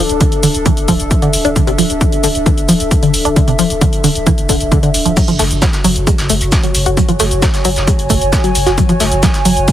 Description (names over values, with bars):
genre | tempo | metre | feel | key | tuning
driving peak-time techno | 133 BPM | 4/4 | straight | F# minor | A4 = 440 Hz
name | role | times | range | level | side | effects
tight sequenced synth | riff | 0.0-9.7 s | B#2 to F#4 | -16 LUFS | equal | chorus, phaser, tube saturation, sidechain pumping, digital delay
saturated sub bass | bass | 0.0-9.7 s | D1 to F#1 | -19 LUFS | equal | overdrive, sidechain pumping, low-pass filter
warbly tape-like pad | texture | 0.0-9.7 s | D4 to G#5 | -19 LUFS | left 1 dB | chorus, built-in reverb, sidechain pumping
techno drum kit | drums | 0.1-9.7 s | crash cymbal, hi-hat, shaker | -19 LUFS | left 1 dB | overdrive, sidechain pumping on hats, sidechain pumping on perc, sidechain pumping on cymbals
electronic kick drum | drums | 0.2-9.7 s | none | -14 LUFS | equal | overdrive
vintage brush drum kit | drums | 5.2-9.7 s | hi-hat, shaker, snare drum | -22 LUFS | equal | high-pass filter on hats, high-pass filter on snare, high-pass filter on perc, high-pass filter on room
room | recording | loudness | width
studio ambience | heavily compressed radio sound, multiband compression | -10 LUFS | side -12 dB against mid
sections
0.0-9.7 A section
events
none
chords
0.0 D5; 5.2 F#m